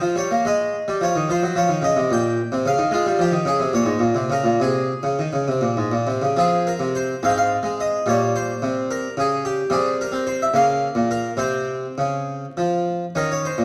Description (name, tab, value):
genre	classical, baroque-style suite movement for harpsichord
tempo	67-74 BPM (dotted quarters)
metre	6/8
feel	rubato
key	F minor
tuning	A4 = 440 Hz
part	harpsichord	solo	0.0-13.6 s	Ab2 to G5	-21 LUFS	equal	none
room	wet recital hall reverb, RT60 1.4 s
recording	vinyl crackle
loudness	-21 LUFS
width	mono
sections	0.0-6.4 A section; 6.4-13.6 A section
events	none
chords	0.4 Ab5; 1.3 F5; 2.1 Bbm; 2.9 Fm; 3.7 Bbm; 4.6 Abadd11/C; 5.5 Abadd9; 6.4 F5; 7.2 Fm/Ab; 8.0 Gdim/Bb; 9.7 C5; 10.5 Bbm/Db; 11.4 Dbmaj7/C; 13.1 Eb5